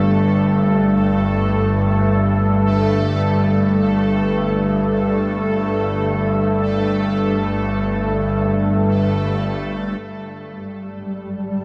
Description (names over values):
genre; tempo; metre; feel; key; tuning
dark ambient drone; free time; none; none; unclear; A4 = 441 Hz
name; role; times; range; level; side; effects
bowed-like drone; drone; 0.0-11.6 s; G1 to G2; -20 LUFS; equal; built-in reverb
bubbling stepped-filter texture; texture; 0.0-11.6 s; A3 to A4; -25 LUFS; equal; chorus, built-in reverb
granular cloud pad; sustained chords; 10.6-11.6 s; G3 to A5; -29 LUFS; equal; built-in reverb
room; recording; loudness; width
wet huge ambient reverb, RT60 7.6 s; none; -18 LUFS; mono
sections
0.0-10.0 A section; 10.0-11.6 B section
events
none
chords
0.0 Gsus2